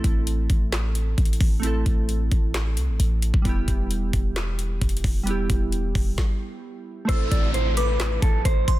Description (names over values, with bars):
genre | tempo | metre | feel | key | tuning
hip hop, trap | 132 BPM | 4/4 | half-time | A minor | A4 = 441 Hz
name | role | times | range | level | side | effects
glassy digital keys | accompaniment | 0.0-8.8 s | G3 to A4 | -31 LUFS | right 3 dB | chorus
clean 808-style bass | bass | 0.0-8.8 s | E1 to C2 | -24 LUFS | equal | none
trap drum kit | drums | 0.0-8.8 s | handclaps, hi-hat, kick drum, snare drum | -24 LUFS | equal | none
mellow electric guitar | melody | 7.1-8.8 s | A4 to D5 | -28 LUFS | right 1 dB | none
delicate synth tine bell | second line | 7.1-8.8 s | C6 to E6 | -33 LUFS | right 3 dB | chorus, phaser, digital delay
downlifter | sound effects | 7.1-8.8 s | none | -32 LUFS | equal | none
room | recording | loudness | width
little or no reverb | dense, heavily limited modern master | -20 LUFS | side -16 dB against mid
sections
0.0-7.1 A section; 7.1-8.8 B section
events
break 0.0-7.1; stop 6.2-7.1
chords
0.0 Am; 3.5 Em; 7.1 Am